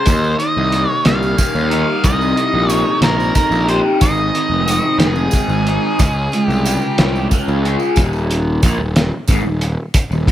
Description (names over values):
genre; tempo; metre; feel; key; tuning
psychedelic rock; 61 BPM (dotted quarters); 6/8; straight; Eb mixolydian; A4 = 440 Hz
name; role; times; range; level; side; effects
octave-fuzz lead guitar; melody; 0.0-7.3 s; Ab4 to F5; -20 LUFS; equal; distortion, tape echo
crunchy overdriven guitar; riff; 0.0-10.3 s; Eb2 to Ab4; -19 LUFS; left 1 dB; phaser
fuzz picked electric bass; bass; 0.1-10.3 s; Eb1 to Eb2; -19 LUFS; equal; overdrive
cloth-damped thuddy drum kit; drums; 0.1-10.3 s; hi-hat, kick drum, snare drum; -16 LUFS; equal; none
tambourine; percussion; 0.1-10.2 s; none; -30 LUFS; right 7 dB; none
room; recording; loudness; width
small room reverb; none; -13 LUFS; side -12 dB against mid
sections
0.0-8.0 A section; 8.0-10.3 B section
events
none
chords
0.1 Eb6; 2.0 Cm; 4.0 Ab; 6.0 Db; 8.0 Eb5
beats
| 0.07 1.05 | 2.04 3.03 | 4.02 5.00 | 5.99 6.98 | 7.97 8.96 | 9.94